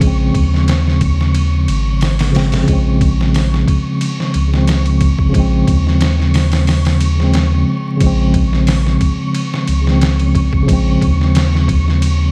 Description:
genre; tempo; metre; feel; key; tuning
trip hop; 90 BPM; 4/4; swing 54% on 16ths; unclear; A4 = 441 Hz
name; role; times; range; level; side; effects
mellow tine electric piano; accompaniment; 0.0-12.3 s; Db3 to C4; -18 LUFS; equal; tremolo
warm sub bass; bass; 0.0-12.3 s; Ab1 to Eb2; -17 LUFS; equal; none
trip hop sampler-style drum kit; drums; 0.0-12.2 s; hi-hat, kick drum, ride cymbal, snare drum; -20 LUFS; equal; small room ambience
flickering grainy texture; texture; 0.0-12.3 s; Db6; -33 LUFS; equal; built-in reverb
room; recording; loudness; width
little or no reverb; vinyl crackle; -14 LUFS; mono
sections
0.0-2.7 A section; 2.7-12.3 A section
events
none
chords
0.0 Bbm7 (rootless); 2.7 Bbm7

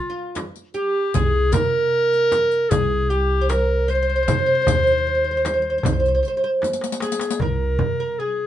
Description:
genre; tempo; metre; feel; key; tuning
Turkish makam ensemble; 77 BPM; 4/4; straight; C minor; A4 = 445 Hz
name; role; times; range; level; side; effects
clear clarinet; melody; 0.0-8.5 s; F4 to C5; -21 LUFS; equal; none
oud; second line; 0.0-8.5 s; F4 to C5; -24 LUFS; right 2 dB; none
darbuka; percussion; 0.4-8.5 s; none; -27 LUFS; left 2 dB; none
frame drum; percussion; 0.4-8.0 s; none; -26 LUFS; right 2 dB; none
riq; percussion; 0.4-7.4 s; none; -30 LUFS; left 6 dB; none
upright bass; bass; 1.1-8.5 s; C2 to C3; -24 LUFS; equal; none
room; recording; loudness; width
moderate studio reverb, RT60 0.7 s; band playing live in one room, nothing above 10.5 kHz; -18 LUFS; side -11 dB against mid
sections
0.0-7.4 A section; 7.4-8.5 B section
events
drum fill 6.6-7.4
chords
none

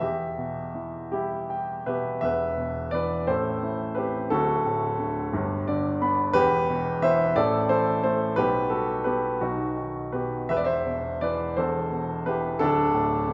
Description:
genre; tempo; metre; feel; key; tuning
classical, lyrical solo piano; 53-60 BPM (dotted quarters); 6/8; rubato; E minor; A4 = 440 Hz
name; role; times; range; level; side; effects
warm baby grand piano; solo; 0.0-13.3 s; D1 to B5; -26 LUFS; equal; none
room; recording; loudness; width
wet concert hall reverb, RT60 1.9 s; recorded in a church or concert hall; -26 LUFS; mono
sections
0.0-2.2 A section; 2.2-13.3 A section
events
grand piano fill 1.1-2.2, 5.3-6.3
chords
0.0 Em; 2.2 E5; 3.3 Am; 4.3 D; 5.3 G; 6.3 Em; 7.4 A5; 8.4 Gmaj9/B; 9.4 B; 10.5 E5; 11.6 Amadd9/E; 12.6 D5

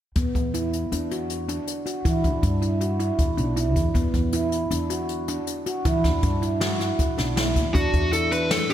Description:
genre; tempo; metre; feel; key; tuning
progressive instrumental, band music in an uneven meter; 158 BPM; 5/4; straight; E minor; A4 = 440 Hz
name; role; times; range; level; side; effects
handpan; arpeggios; 0.2-8.7 s; B3 to F#4; -26 LUFS; right 1 dB; slapback echo
upright bass; bass; 0.2-8.6 s; B1 to E3; -26 LUFS; equal; none
jazz brush drum kit; drums; 0.2-8.7 s; hi-hat, kick drum, snare drum; -26 LUFS; equal; none
high-gain lead guitar; melody; 7.7-8.7 s; F#4 to B4; -22 LUFS; equal; distortion, digital delay
room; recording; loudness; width
moderate lush hall reverb, RT60 1.8 s, studio ambience; big arena sound; -21 LUFS; side -11 dB against mid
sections
0.2-7.7 A section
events
none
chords
0.2 Em9; 7.7 E7sus2

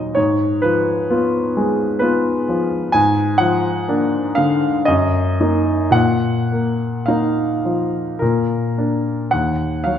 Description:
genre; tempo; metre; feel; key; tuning
classical, romantic nocturne for solo piano; 52-66 BPM; 3/4; rubato; unclear; A4 = 439 Hz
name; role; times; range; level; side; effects
clear grand piano; solo; 0.0-10.0 s; Eb2 to Ab5; -16 LUFS; left 1 dB; none
room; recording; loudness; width
wet recital hall reverb, RT60 1.6 s; recorded in a church or concert hall, nothing above 10.3 kHz; -16 LUFS; side -9 dB against mid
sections
0.0-10.0 A section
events
none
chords
0.2 Fdim/Ab; 2.9 Bb7/Ab; 4.9 Ebm/Gb; 5.9 Bbsus4; 8.2 Bb; 9.3 Ebm

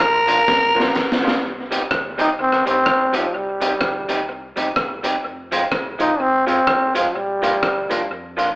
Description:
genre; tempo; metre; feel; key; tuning
ska; 126 BPM; 4/4; swing 58% on 8ths; C minor; A4 = 440 Hz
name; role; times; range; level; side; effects
growling tenor saxophone; melody; 0.0-1.2 s; Bb4; -15 LUFS; equal; none
electric guitar through a small old amp; accompaniment; 0.0-8.5 s; F3 to G4; -23 LUFS; equal; dub echo
fingered electric bass; bass; 0.0-8.5 s; F1 to F2; -44 LUFS; equal; none
crunchy breakbeat drum kit; drums; 0.0-8.5 s; hi-hat, kick drum, rim click, snare drum; -22 LUFS; equal; dub echo
group handclap; percussion; 0.0-1.1 s; none; -34 LUFS; left 1 dB; none
growling trombone; melody; 2.2-8.1 s; F3 to Eb4; -18 LUFS; equal; none
room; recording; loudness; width
moderate large studio reverb, RT60 1.3 s; band playing live in one room, AM radio sound; -16 LUFS; side -23 dB against mid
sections
0.0-1.4 A section; 1.4-8.6 B section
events
tenor saxophone solo 0.0-1.4; drum fill 0.5-1.4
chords
0.0 Bb; 1.4 Cm; 5.2 Fm; 7.2 Bb

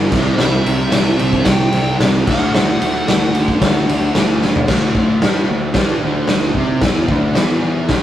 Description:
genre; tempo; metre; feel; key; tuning
garage rock duo or trio; 112 BPM; 4/4; straight; unclear; A4 = 440 Hz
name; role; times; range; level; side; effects
thick fuzz guitar; riff; 0.0-8.0 s; G2 to C5; -18 LUFS; equal; distortion
fuzz picked electric bass; bass; 0.0-8.0 s; C2 to C3; -21 LUFS; equal; overdrive
raw garage drum kit; drums; 0.1-8.0 s; crash cymbal, kick drum, ride cymbal, snare drum, toms; -16 LUFS; equal; none
fuzz lead guitar; melody; 0.4-4.1 s; E5 to G5; -23 LUFS; equal; distortion
room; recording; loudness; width
moderate studio reverb, RT60 0.5 s; rough rehearsal-room recording, tube saturation; -13 LUFS; side -12 dB against mid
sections
0.0-4.7 A section; 4.7-8.0 B section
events
drum fill 4.4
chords
0.1 C; 2.3 D; 4.7 D5; 7.4 E5

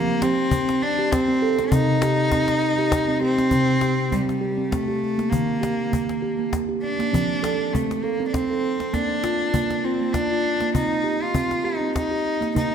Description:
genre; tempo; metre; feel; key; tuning
world meditative, meditative tuned percussion; 100 BPM; 3/4; swing 55% on 16ths; C dorian; A4 = 440 Hz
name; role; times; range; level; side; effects
clear cello; melody; 0.0-12.7 s; G3 to F4; -23 LUFS; left 1 dB; tape echo
steel tongue drum; arpeggios; 0.0-12.7 s; C3 to A4; -23 LUFS; right 2 dB; none
cajon; percussion; 0.2-12.7 s; none; -27 LUFS; left 2 dB; none
room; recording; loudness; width
wet concert hall reverb, RT60 1.8 s, small room ambience; none; -20 LUFS; side -8 dB against mid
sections
0.0-3.5 A section; 3.5-12.7 B section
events
none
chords
0.0 F5; 1.7 Cm; 3.5 C5; 5.3 Eb; 7.1 F; 8.9 Bb; 10.7 Cm

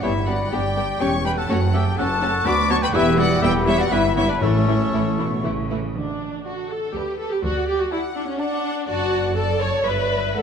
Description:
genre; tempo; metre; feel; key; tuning
quick classical-period movement for symphony orchestra; 123 BPM; 3/4; rubato; D major; A4 = 440 Hz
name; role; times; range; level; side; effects
rich studio violin section; melody; 0.0-10.4 s; A4 to D6; -27 LUFS; left 4 dB; none
clear clarinet; second line; 0.0-5.4 s; C#4 to D5; -29 LUFS; left 3 dB; none
clear oboe; second line; 0.0-5.5 s; A4 to B5; -28 LUFS; right 1 dB; none
mellow hollow silver concert flute; second line; 0.0-5.7 s; G5 to E6; -29 LUFS; left 3 dB; none
warm studio violin section; second line; 0.0-10.4 s; B3 to B5; -30 LUFS; left 4 dB; none
warm studio viola section; accompaniment; 0.0-10.4 s; E3 to C#5; -25 LUFS; right 1 dB; none
mellow French horn section; sustained chords; 0.0-5.7 s; A3 to G4; -26 LUFS; left 4 dB; none
rich studio double bass section; bass; 0.0-10.4 s; E1 to D2; -27 LUFS; right 3 dB; none
warm studio cello section; bass; 0.0-10.4 s; D2 to C#3; -27 LUFS; right 2 dB; none
timpani; percussion; 4.4-6.7 s; A2 to D3; -28 LUFS; left 2 dB; none
room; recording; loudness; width
wet concert hall reverb, RT60 1.8 s; dark, warm production; -19 LUFS; side -7 dB against mid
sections
0.0-6.0 A section; 6.0-10.4 B section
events
none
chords
0.0 G; 1.0 C#dim/E; 1.5 F#m; 2.5 Bm/D; 2.9 Em; 3.9 Em/G; 4.4 A; 6.0 D; 7.0 G/D; 7.4 D; 8.9 D/F#; 9.8 Em7/G

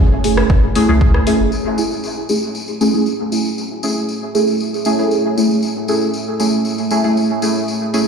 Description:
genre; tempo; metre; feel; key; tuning
dub techno; 117 BPM; 4/4; straight; F# minor; A4 = 440 Hz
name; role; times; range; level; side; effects
deep dark ambient pad; sustained chords; 0.0-8.1 s; A3 to E5; -26 LUFS; right 5 dB; chorus, built-in reverb, sidechain pumping
warm sub bass; bass; 0.0-1.5 s; F#1 to C#2; -17 LUFS; equal; tube saturation, sidechain pumping
deep mellow chord stab; stabs; 0.2-8.1 s; A3 to G#4; -16 LUFS; equal; chorus, phaser, sidechain pumping, dub echo
deep house drum kit; drums; 0.2-1.4 s; hi-hat, rim click; -24 LUFS; left 1 dB; overdrive, dub echo
electronic kick drum; drums; 0.5-1.1 s; none; -14 LUFS; equal; overdrive
tambourine; percussion; 1.5-8.0 s; none; -26 LUFS; left 3 dB; none
room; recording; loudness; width
wet spring reverb, RT60 1.9 s, digital ambience; played on a big sound system in a bare room, large studio reverb; -14 LUFS; side -6 dB against mid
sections
0.0-1.5 A section; 1.5-8.1 B section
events
filter sweep on synth stab 0.0-1.5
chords
0.0 F#m7

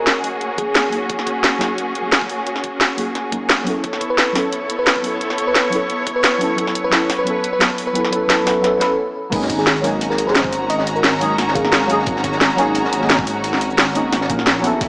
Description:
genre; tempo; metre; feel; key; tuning
liquid drum and bass; 175 BPM; 4/4; straight; unclear; A4 = 440 Hz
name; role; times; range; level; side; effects
bell-like FM electric piano; melody; 0.0-1.1, 4.1-12.0 s; Ab4 to Eb5; -22 LUFS; equal; chorus, low-pass filter, digital delay
deep mellow chord stab; accompaniment; 0.0-14.9 s; Gb3 to Bb4; -22 LUFS; equal; chorus, phaser, digital delay
rich studio string section; sustained chords; 0.0-14.9 s; Bb3 to Bb5; -22 LUFS; equal; sidechain pumping, low-pass filter
drum and bass drum kit; drums; 0.1-14.9 s; cabasa, crash cymbal, hi-hat, snare drum; -17 LUFS; equal; high-pass filter on hats, high-pass filter on snare, high-pass filter on cymbals, high-pass filter on perc, high-pass filter on room
electronic kick drum; drums; 0.6-14.9 s; none; -28 LUFS; equal; high-pass filter on kick, high-pass filter on room
dark detuned saw bass; bass; 9.3-14.9 s; Ab1 to B1; -24 LUFS; equal; none
crunchy breakbeat drum kit; drums; 9.3-14.9 s; hi-hat, snare drum; -25 LUFS; equal; high-pass filter on hats, high-pass filter on snare, high-pass filter on room
room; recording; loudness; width
moderate lush hall reverb, RT60 1.9 s, digital ambience; small speaker sound; -15 LUFS; side -35 dB against mid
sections
0.0-9.3 A section; 9.3-14.9 B section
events
build-up 0.0-9.3; filter sweep on synth stab 0.0-9.3; filter sweep on FM electric piano 0.0-9.3; stop 9.0-9.3; drop 9.3-14.9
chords
0.0 Ab9sus4; 3.8 B9sus4; 9.3 Ab9sus4

